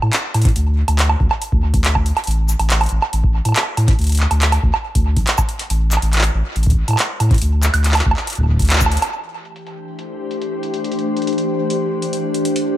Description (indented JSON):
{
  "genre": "IDM",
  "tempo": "140 BPM",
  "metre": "4/4",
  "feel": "straight",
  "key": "A minor",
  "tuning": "A4 = 440 Hz",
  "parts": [
    { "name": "warm sub bass", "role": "bass", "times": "0.0-9.0 s", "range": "A1 to A2", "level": "-16 LUFS", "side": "equal", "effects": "none" },
    { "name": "booming analog drum machine", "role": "drums", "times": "0.0-12.6 s", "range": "cabasa, handclaps, hi-hat, woodblock", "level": "-20 LUFS", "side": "right 2 dB", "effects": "low-pass filter on hats, low-pass filter on perc, low-pass filter on snare, low-pass filter on room, tape echo" },
    { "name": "electronic kick drum", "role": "drums", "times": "0.5-8.9 s", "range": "none", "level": "-17 LUFS", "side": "equal", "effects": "none" },
    { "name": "glassy FM pad", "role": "sustained chords", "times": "9.7-12.8 s", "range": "E3 to C5", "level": "-19 LUFS", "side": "left 2 dB", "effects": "ensemble chorus, built-in reverb, vintage 12-bit sampler grit" }
  ],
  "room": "light reverb, digital ambience",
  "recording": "echo-heavy mix",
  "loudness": "-15 LUFS",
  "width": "side -13 dB against mid",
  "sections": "0.0-9.1 A section; 9.1-12.8 B section",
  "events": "band accent 8.7; drum fill 8.9; filter sweep on drum 9.1-12.8",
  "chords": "0.0 N.C.; 4.0 D5; 5.7 N.C.; 9.1 Am7"
}